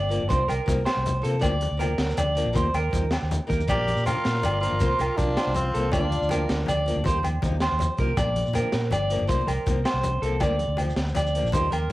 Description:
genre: highlife guitar band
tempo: 107 BPM (dotted quarters)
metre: 12/8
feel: straight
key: Bb major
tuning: A4 = 440 Hz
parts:
  - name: electric guitar through a small old amp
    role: arpeggios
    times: 0.0-11.9 s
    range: A4 to D5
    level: -27 LUFS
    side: right 1 dB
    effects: cassette tape, analog delay
  - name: fingered electric bass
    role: bass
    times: 0.0-11.9 s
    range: G1 to C3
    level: -27 LUFS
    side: equal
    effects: none
  - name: picked acoustic archtop guitar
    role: accompaniment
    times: 0.1-11.7 s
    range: F3 to G4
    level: -31 LUFS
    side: left 3 dB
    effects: cassette tape
  - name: crunchy breakbeat drum kit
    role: drums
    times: 0.1-11.8 s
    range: hi-hat, kick drum, snare drum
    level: -30 LUFS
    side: equal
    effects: cassette tape
  - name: congas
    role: percussion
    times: 0.2-11.9 s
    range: none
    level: -35 LUFS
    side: left 4 dB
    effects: none
  - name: shekere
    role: percussion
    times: 0.3-11.6 s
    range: none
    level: -33 LUFS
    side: right 1 dB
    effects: none
  - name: agogo bells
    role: percussion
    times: 0.5-11.9 s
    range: none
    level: -34 LUFS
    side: right 1 dB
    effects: none
  - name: raspy tenor saxophone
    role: melody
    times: 3.7-6.6 s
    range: C4 to G4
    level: -28 LUFS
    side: equal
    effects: cassette tape
  - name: breathy trumpet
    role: second line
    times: 3.7-6.6 s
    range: F4 to Bb4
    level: -34 LUFS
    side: left 2 dB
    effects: cassette tape
room: light reverb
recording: home recording on cassette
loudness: -22 LUFS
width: side -17 dB against mid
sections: 0.0-11.9 A section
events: none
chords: 0.3 Fsus4/C; 1.4 Bb/D; 2.6 Ebadd9; 3.7 Bb; 4.8 Fsus4/C; 5.9 Bb/D; 7.1 Ebadd9; 8.2 Bb; 9.3 Fsus4/C; 10.4 Bb/D

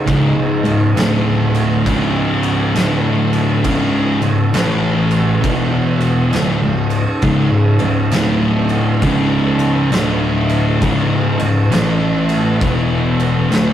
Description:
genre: stoner and doom metal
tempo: 67 BPM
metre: 4/4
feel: swing 64% on 8ths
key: C# minor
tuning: A4 = 440 Hz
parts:
  - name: analog drone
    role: sustained chords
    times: 0.0-13.7 s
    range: C#3 to D#4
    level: -25 LUFS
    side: equal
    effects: chorus
  - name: thick fuzz guitar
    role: riff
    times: 0.1-13.7 s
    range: C#2 to A3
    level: -18 LUFS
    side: left 4 dB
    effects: distortion
  - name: thick fuzz guitar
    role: riff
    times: 0.1-13.7 s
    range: C#2 to A3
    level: -17 LUFS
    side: right 3 dB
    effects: distortion
  - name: fuzz picked electric bass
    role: bass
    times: 0.1-13.7 s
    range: C#1 to A1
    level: -24 LUFS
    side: equal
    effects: overdrive
  - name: oversized low-tuned drum kit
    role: drums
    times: 0.1-13.7 s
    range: crash cymbal, kick drum, snare drum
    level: -20 LUFS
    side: right 1 dB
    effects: none
room: wet studio reverb, RT60 0.5 s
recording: rough rehearsal-room recording, warm saturation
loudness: -13 LUFS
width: side -10 dB against mid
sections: 0.0-13.7 A section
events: none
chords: 0.0 C#5; 1.0 D5; 1.9 C#5; 2.8 D5; 3.7 C#5; 4.5 A5; 5.4 E5; 6.3 C#5; 8.1 D5; 9.0 C#5; 9.9 D5; 10.8 C#5; 11.7 A5; 12.6 E5

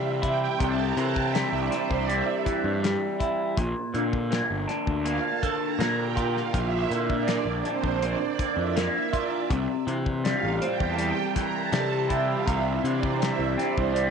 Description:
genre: psychedelic rock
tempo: 81 BPM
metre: 4/4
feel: straight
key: C mixolydian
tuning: A4 = 443 Hz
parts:
  - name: electric guitar through a small old amp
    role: riff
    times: 0.0-14.1 s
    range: Bb2 to F4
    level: -27 LUFS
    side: left 1 dB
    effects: phaser
  - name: fuzz picked electric bass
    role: bass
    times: 0.0-14.1 s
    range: G1 to C3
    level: -29 LUFS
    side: left 1 dB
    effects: overdrive
  - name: string machine, cellos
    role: sustained chords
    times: 0.2-14.1 s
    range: C5 to Bb5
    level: -30 LUFS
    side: right 12 dB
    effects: ensemble chorus
  - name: cloth-damped thuddy drum kit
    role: drums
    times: 0.2-14.1 s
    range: hi-hat, kick drum, snare drum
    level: -30 LUFS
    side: left 3 dB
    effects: vintage 12-bit sampler grit
room: light reverb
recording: 1960s-style stereo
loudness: -24 LUFS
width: side -6 dB against mid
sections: 0.0-14.1 A section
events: string machine solo 0.0-14.1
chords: 0.0 C; 3.6 Bb; 9.5 C

